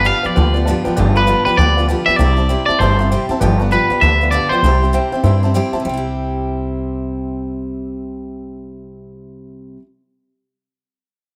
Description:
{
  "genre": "rockabilly",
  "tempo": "197 BPM",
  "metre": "4/4",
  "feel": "swing 62% on 8ths",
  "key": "C major",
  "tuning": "A4 = 439 Hz",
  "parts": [
    { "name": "twangy electric guitar", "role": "melody", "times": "0.0-5.5 s", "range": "B4 to F5", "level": "-19 LUFS", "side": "equal", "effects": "spring reverb, analog delay" },
    { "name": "dark upright piano", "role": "accompaniment", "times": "0.0-9.8 s", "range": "B4 to A5", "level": "-26 LUFS", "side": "equal", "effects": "none" },
    { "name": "picked steel-string acoustic guitar", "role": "accompaniment", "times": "0.0-9.9 s", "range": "G2 to G4", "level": "-24 LUFS", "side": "equal", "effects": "none" },
    { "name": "upright bass", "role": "bass", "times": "0.0-9.8 s", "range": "G1 to G2", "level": "-19 LUFS", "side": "equal", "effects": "none" }
  ],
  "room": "light reverb, studio ambience",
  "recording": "none",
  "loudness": "-16 LUFS",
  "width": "mono",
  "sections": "0.0-3.4 A section; 3.4-5.8 B section; 5.8-8.3 C section",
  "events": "upright piano fill 0.5-1.0",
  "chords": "0.0 G7; 2.2 C; 3.4 G7; 4.6 C",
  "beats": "0.06 0.37 0.67 | 0.97 1.28 1.58 1.89 | 2.19 2.50 2.80 3.10 | 3.41 3.71 4.02 4.32 | 4.63 4.93 5.24 5.54 | 5.85 6.15 6.46 6.76 | 7.07 7.38 7.68 7.99"
}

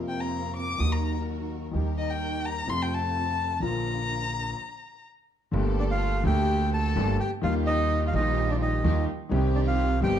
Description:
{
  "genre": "tango",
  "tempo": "127 BPM",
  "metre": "4/4",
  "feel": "rubato",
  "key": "Bb major, G minor from 5.5 s",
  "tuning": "A4 = 439 Hz",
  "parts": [
    { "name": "clear concert grand piano", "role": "accompaniment", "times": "0.0-10.2 s", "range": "G1 to G4", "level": "-29 LUFS", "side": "left 2 dB", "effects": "none" },
    { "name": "warm studio string section", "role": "stabs", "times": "0.0-10.2 s", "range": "Bb3 to Bb4", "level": "-37 LUFS", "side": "right 5 dB", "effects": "none" },
    { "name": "upright bass", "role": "bass", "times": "0.0-10.2 s", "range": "G1 to F2", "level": "-28 LUFS", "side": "right 2 dB", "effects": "none" },
    { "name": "warm violin", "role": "second line", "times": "0.1-10.2 s", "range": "D4 to Eb6", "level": "-32 LUFS", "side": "left 5 dB", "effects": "none" },
    { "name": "bandoneon", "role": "melody", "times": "5.8-10.2 s", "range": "D5 to A5", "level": "-30 LUFS", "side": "right 1 dB", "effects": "plate reverb" }
  ],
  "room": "moderate large studio reverb, RT60 0.9 s",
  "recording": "dark, warm production",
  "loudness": "-24 LUFS",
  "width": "side -9 dB against mid",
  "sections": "0.0-5.5 A section; 5.5-10.2 B section",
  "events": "violin solo 0.0-5.5; stop 4.6-5.5",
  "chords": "0.0 Fsus4; 0.8 Ebm; 1.7 Eb; 2.7 F; 3.6 Bb; 5.5 Gmadd9; 7.4 Ebadd9; 9.3 Cm",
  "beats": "0.32 0.80 1.27 | 1.74 2.21 2.68 3.15 | 3.63 4.10 4.58 5.05 | 5.54 6.01 6.49 6.96 | 7.43 7.91 8.37 8.84 | 9.31 9.78"
}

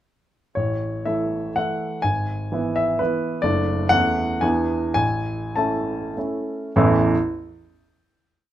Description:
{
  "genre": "classical, romantic triple-time dance for piano with dotted rhythms",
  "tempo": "96-139 BPM",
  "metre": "3/4",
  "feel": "rubato",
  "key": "A major",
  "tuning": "A4 = 440 Hz",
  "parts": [
    { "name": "warm baby grand piano", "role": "solo", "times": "0.6-7.1 s", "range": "F#1 to A5", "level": "-20 LUFS", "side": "equal", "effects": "none" }
  ],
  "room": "light reverb",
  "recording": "minimal, uncompressed stereo recording",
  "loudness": "-20 LUFS",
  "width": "side -12 dB against mid",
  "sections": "0.5-6.7 A section; 6.7-8.3 final chord",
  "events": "slowing down 2.8-6.7",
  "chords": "0.5 A; 2.0 E/G#; 3.4 D/F#; 3.9 A/E; 4.4 E7; 5.0 A",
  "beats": "| 0.54 1.05 1.56 | 2.04 2.52 3.00 | 3.44 3.91 4.42 | 4.96 5.56 6.16 | 6.74"
}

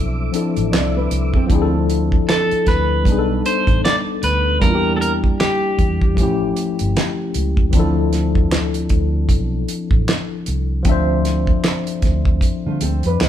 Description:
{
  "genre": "R&B, neo-soul",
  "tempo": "77 BPM",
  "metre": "4/4",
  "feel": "swing 60% on 16ths",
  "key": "D dorian",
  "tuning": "A4 = 439 Hz",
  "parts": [
    { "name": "tine electric piano", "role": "accompaniment", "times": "0.0-13.3 s", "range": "E3 to E5", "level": "-21 LUFS", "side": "left 4 dB", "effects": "medium stereo tremolo" },
    { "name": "tonewheel organ", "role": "sustained chords", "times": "0.0-1.5 s", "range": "C4 to D6", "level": "-32 LUFS", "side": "right 2 dB", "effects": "slow rotary speaker, chorus vibrato" },
    { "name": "vintage muted fingered electric bass", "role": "bass", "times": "0.0-13.3 s", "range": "G1 to D3", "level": "-21 LUFS", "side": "right 1 dB", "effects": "none" },
    { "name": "damped 70s drum kit", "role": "drums", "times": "0.3-13.3 s", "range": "handclaps, hi-hat, kick drum, snare drum", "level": "-18 LUFS", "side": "right 1 dB", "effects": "none" },
    { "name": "nylon-string guitar", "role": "second line", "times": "0.7-1.7, 12.7-13.3 s", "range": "A3 to D5", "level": "-24 LUFS", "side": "right 3 dB", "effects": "none" },
    { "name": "electric guitar at the edge of break-up", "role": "melody", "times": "2.3-6.9 s", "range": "G4 to D5", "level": "-20 LUFS", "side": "right 1 dB", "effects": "none" }
  ],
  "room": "light reverb",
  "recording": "band playing live in one room",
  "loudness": "-15 LUFS",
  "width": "side -10 dB against mid",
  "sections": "0.0-1.5 A section; 1.5-13.3 A section",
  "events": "none",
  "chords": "0.0 Dm9; 3.1 B7alt; 4.6 Em7b5; 6.2 A7b13; 7.7 Dm9",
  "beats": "0.72 | 1.50 2.28 3.06 3.84 | 4.62 5.39 6.17 6.95 | 7.73 8.51 9.29 10.07 | 10.85 11.63 12.41 13.19"
}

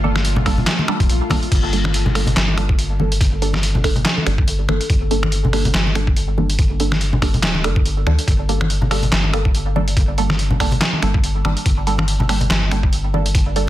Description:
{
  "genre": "deep dubstep",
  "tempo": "142 BPM",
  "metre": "4/4",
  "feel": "swing 57% on 16ths, half-time",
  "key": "G minor",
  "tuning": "A4 = 440 Hz",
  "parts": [
    { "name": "bowed-like drone", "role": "sustained chords", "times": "0.0-1.5 s", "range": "Bb2 to F4", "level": "-28 LUFS", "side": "left 4 dB", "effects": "built-in reverb" },
    { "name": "filtered dub chord stab", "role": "stabs", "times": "0.0-13.7 s", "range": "G3 to A4", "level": "-24 LUFS", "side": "right 3 dB", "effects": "phaser, analog chorus, dub echo" },
    { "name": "soft dub sub bass", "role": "bass", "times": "0.0-13.7 s", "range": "D1 to D2", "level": "-20 LUFS", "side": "equal", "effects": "none" },
    { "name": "congas", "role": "percussion", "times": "0.0-13.2 s", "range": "none", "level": "-23 LUFS", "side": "left 1 dB", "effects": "none" },
    { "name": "trip hop sampler-style drum kit", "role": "drums", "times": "0.2-13.7 s", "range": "crash cymbal, finger snaps, handclaps, hi-hat, snare drum", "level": "-22 LUFS", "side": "equal", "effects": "soft clipping on snare" },
    { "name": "electronic kick drum", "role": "drums", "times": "0.5-13.4 s", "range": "none", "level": "-17 LUFS", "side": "equal", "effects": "none" }
  ],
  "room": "light reverb, digital ambience",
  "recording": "dense, heavily limited modern master",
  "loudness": "-15 LUFS",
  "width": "side -14 dB against mid",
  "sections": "0.0-1.5 A section; 1.5-13.7 A section",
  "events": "drop 0.0-1.5, 1.5-13.7",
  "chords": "0.0 Gmadd9",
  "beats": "0.25 0.67 1.09 | 1.52 1.94 2.36 2.79 | 3.21 3.63 4.05 4.47 | 4.90 5.32 5.74 6.17 | 6.59 7.01 7.43 7.86 | 8.28 8.70 9.12 9.54 | 9.97 10.39 10.81 11.23 | 11.66 12.08 12.50 12.93 | 13.35"
}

